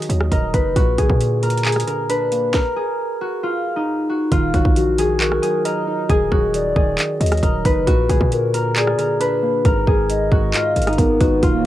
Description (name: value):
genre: hip hop, trap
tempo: 135 BPM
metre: 4/4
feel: half-time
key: Eb harmonic minor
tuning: A4 = 440 Hz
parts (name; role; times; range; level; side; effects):
- concert harp; melody; 0.0-11.7 s; Eb4 to Cb5; -20 LUFS; left 1 dB; cassette tape
- soft electric-piano-like synth keys; accompaniment; 0.0-11.7 s; Ab2 to Eb5; -25 LUFS; right 2 dB; chorus, cassette tape
- trap drum kit; drums; 0.0-11.5 s; handclaps, hi-hat, kick drum, rim click, snare drum; -19 LUFS; equal; none
- hard-hitting 808-style bass; bass; 0.1-11.6 s; Eb1 to Bb2; -21 LUFS; equal; none
- hollow clarinet-like synth lead; second line; 4.8-11.4 s; Gb4 to Eb5; -22 LUFS; left 2 dB; chorus, cassette tape, analog delay
- hollow soft pad; sustained chords; 11.4-11.7 s; Eb3 to Gb4; -22 LUFS; right 6 dB; ensemble chorus, cassette tape
room: little or no reverb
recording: home recording on cassette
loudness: -16 LUFS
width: side -13 dB against mid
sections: 0.0-4.3 A section; 4.3-11.7 B section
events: stop 2.5-4.3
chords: 0.0 Ebm; 0.8 Bb; 2.5 N.C.; 4.3 Ebm; 7.9 Bb; 9.7 Abm